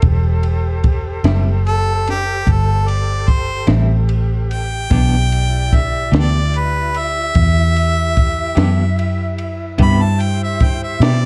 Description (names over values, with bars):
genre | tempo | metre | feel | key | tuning
slow blues | 49 BPM (dotted quarters) | 12/8 | straight | E minor | A4 = 440 Hz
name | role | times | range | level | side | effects
breathy bright flute section | sustained chords | 0.0-11.3 s | E4 to E5 | -31 LUFS | equal | none
vintage muted fingered electric bass | bass | 0.0-11.3 s | E1 to B2 | -18 LUFS | equal | none
compact cocktail drum kit | drums | 0.0-11.2 s | kick drum, ride cymbal, snare drum | -19 LUFS | equal | none
semi-hollow electric guitar | accompaniment | 1.2-11.3 s | A2 to G4 | -25 LUFS | equal | tremolo
bright harmonica | melody | 1.7-11.3 s | G4 to B5 | -23 LUFS | equal | none
room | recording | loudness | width
light reverb | dark, warm production | -16 LUFS | mono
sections
0.0-11.3 A section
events
harmonica solo 0.0-11.3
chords
0.0 Am7; 4.9 Em7; 9.8 Cmaj7